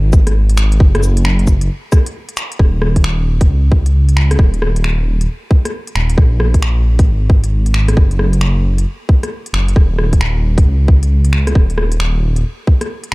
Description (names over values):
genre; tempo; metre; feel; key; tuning
future garage; 134 BPM; 4/4; swing 64% on 16ths; unclear; A4 = 439 Hz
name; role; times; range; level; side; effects
dark detuned saw bass; bass; 0.0-12.4 s; Eb1 to Db2; -13 LUFS; equal; tube saturation, sidechain pumping
electronic kick drum; drums; 0.1-12.8 s; none; -10 LUFS; equal; overdrive
organic electronic drum kit; drums; 0.1-13.1 s; cabasa, finger snaps, hi-hat, rim click; -22 LUFS; left 1 dB; overdrive
room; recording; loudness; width
little or no reverb; dark, warm production; -11 LUFS; side -23 dB against mid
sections
0.0-2.6 A section; 2.6-13.1 B section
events
break 2.1-2.6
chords
none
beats
0.36 | 0.81 1.25 1.70 2.15 | 2.60 3.04 3.49 3.94 | 4.39 4.83 5.28 5.73 | 6.18 6.63 7.07 7.52 | 7.97 8.42 8.87 9.31 | 9.76 10.21 10.66 11.10 | 11.55 12.00 12.45 12.89